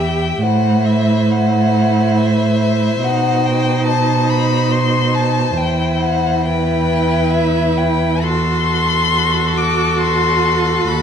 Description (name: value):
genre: classical, slow romantic movement for string quartet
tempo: 69 BPM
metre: 3/4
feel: uneven beats, rubato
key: unclear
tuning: A4 = 439 Hz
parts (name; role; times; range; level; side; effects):
- rich violin; melody; 0.0-11.0 s; E5 to D6; -19 LUFS; left 6 dB; none
- clear violin; second line; 0.0-11.0 s; A4 to E5; -22 LUFS; left 3 dB; none
- rich viola; accompaniment; 0.0-11.0 s; D#4 to G4; -21 LUFS; right 4 dB; none
- rich cello; bass; 0.0-11.0 s; D#2 to B2; -17 LUFS; right 2 dB; none
room: wet stone room reverb, RT60 1.0 s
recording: dark, warm production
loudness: -13 LUFS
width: side -8 dB against mid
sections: 0.0-11.0 A section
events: none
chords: 0.4 Am; 3.0 B; 5.6 Em; 8.2 F#m7b5/E